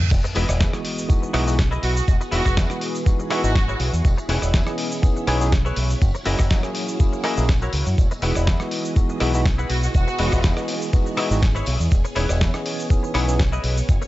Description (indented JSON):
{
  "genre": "nu-disco, nu disco",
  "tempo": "122 BPM",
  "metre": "4/4",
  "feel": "swing 54% on 16ths",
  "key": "E lydian",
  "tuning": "A4 = 440 Hz",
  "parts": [
    { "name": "dusty soul sampler-style drum kit", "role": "drums", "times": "0.0-14.1 s", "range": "crash cymbal, hi-hat, rim click, shaker, snare drum, toms", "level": "-28 LUFS", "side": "equal", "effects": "none" },
    { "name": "reverse cymbal and impact", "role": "sound effects", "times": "0.0-2.1 s", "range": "none", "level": "-34 LUFS", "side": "right 2 dB", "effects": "none" },
    { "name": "string machine, full ensemble", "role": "sustained chords", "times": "0.1-14.1 s", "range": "A#3 to D#6", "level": "-32 LUFS", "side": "equal", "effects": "ensemble chorus, sidechain pumping" },
    { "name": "fingered electric bass with an envelope filter", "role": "bass", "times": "0.1-14.0 s", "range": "E1 to F#2", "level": "-22 LUFS", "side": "equal", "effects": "sidechain pumping" },
    { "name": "electronic kick drum", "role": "drums", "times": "0.1-14.0 s", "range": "none", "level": "-18 LUFS", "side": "equal", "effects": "none" },
    { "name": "tambourine", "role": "percussion", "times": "0.1-14.1 s", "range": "none", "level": "-38 LUFS", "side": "left 2 dB", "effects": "none" },
    { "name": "direct-recorded clean electric guitar", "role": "riff", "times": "0.2-14.1 s", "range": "E4 to F#5", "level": "-29 LUFS", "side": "left 2 dB", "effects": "ensemble chorus" },
    { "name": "tine electric piano", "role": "accompaniment", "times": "0.3-13.4 s", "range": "E3 to D#5", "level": "-27 LUFS", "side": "equal", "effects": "medium stereo tremolo, sidechain pumping" },
    { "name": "warm symphonic violin section", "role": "melody", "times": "1.8-4.0, 9.7-10.6 s", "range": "F#4", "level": "-28 LUFS", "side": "right 2 dB", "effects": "analog delay" }
  ],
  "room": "little or no reverb",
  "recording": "nothing above 7.8 kHz",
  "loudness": "-18 LUFS",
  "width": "side -16 dB against mid",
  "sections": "0.1-14.1 A section",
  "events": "drop 0.1-14.1; impact 0.1-2.1",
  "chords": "0.1 Emaj7; 4.0 C#m7/E; 6.0 F#7; 8.0 Emaj7; 11.9 C#m7/E",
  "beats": "| 0.11 0.60 1.10 1.59 | 2.08 2.57 3.06 3.56 | 4.05 4.54 5.03 5.52 | 6.01 6.50 7.00 7.49 | 7.98 8.47 8.96 9.46 | 9.95 10.44 10.93 11.42 | 11.91 12.41 12.90 13.39 | 13.88"
}